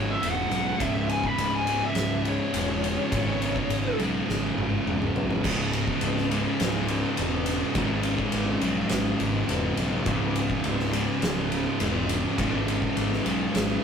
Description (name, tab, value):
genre	stoner and doom metal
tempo	104 BPM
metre	4/4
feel	straight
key	C# minor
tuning	A4 = 439 Hz
part	fuzz lead guitar	melody	0.0-4.0 s	C#5 to B5	-29 LUFS	left 2 dB	distortion
part	heavy high-gain guitar	riff	0.0-13.8 s	C#2 to C#3	-32 LUFS	right 1 dB	distortion
part	thick fuzz guitar	riff	0.0-13.8 s	C#2 to C#3	-31 LUFS	left 7 dB	distortion
part	thick fuzz guitar	riff	0.0-13.8 s	C#2 to C#3	-31 LUFS	right 7 dB	distortion
part	fuzz fingered electric bass	bass	0.0-13.8 s	C#1 to B1	-30 LUFS	equal	overdrive
part	oversized low-tuned drum kit	drums	0.2-13.7 s	crash cymbal, kick drum, ride cymbal, snare drum, toms	-29 LUFS	left 1 dB	none
room	moderate stone room reverb, RT60 1.0 s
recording	rough rehearsal-room recording, tube saturation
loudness	-23 LUFS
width	side -7 dB against mid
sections	0.0-5.4 A section; 5.4-13.8 B section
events	lead electric guitar solo 0.0-5.4; drum fill 4.3-5.4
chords	0.0 C#m